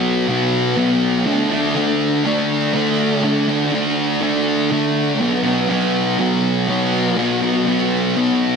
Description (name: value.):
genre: rock.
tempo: 122 BPM.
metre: 4/4.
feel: straight.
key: D major.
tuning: A4 = 441 Hz.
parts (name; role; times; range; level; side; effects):
thick fuzz guitar; solo; 0.0-8.6 s; B2 to D4; -15 LUFS; equal; distortion, wide subtle chorus.
room: wet lush hall reverb, RT60 2.1 s.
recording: dreamy mix soaked in reverb.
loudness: -15 LUFS.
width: side -5 dB against mid.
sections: 0.0-8.6 A section.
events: none.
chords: 0.0 B5; 1.3 D5; 5.2 B5.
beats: 0.28 0.77 | 1.26 1.76 2.25 2.74 | 3.23 3.73 4.22 4.71 | 5.20 5.70 6.19 6.68 | 7.18 7.67 8.16.